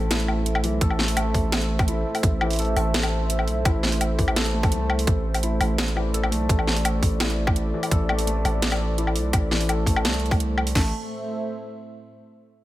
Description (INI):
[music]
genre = half-time drum and bass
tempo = 169 BPM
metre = 4/4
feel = half-time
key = A minor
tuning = A4 = 440 Hz
[part]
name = dark analog pad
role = sustained chords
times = 0.0-12.1 s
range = A3 to E5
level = -30 LUFS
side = right 1 dB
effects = chorus, sidechain pumping
[part]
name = felt-muted upright piano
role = arpeggios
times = 0.0-10.9 s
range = E3 to A4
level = -30 LUFS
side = left 2 dB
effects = tape echo
[part]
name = long sustained 808-style bass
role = bass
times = 0.0-10.9 s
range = A1 to C2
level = -25 LUFS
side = equal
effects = none
[part]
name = drum and bass drum kit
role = drums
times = 0.1-10.7 s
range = hi-hat, snare drum, woodblock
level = -26 LUFS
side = equal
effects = overdrive
[part]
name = drum and bass drum kit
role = drums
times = 0.8-10.8 s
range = crash cymbal, kick drum, snare drum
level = -22 LUFS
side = equal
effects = overdrive
[sound]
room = light reverb, digital ambience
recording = none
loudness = -20 LUFS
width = side -15 dB against mid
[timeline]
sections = 0.0-10.8 A section; 10.8-12.2 B section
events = drop 0.0-10.8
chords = 0.0 Am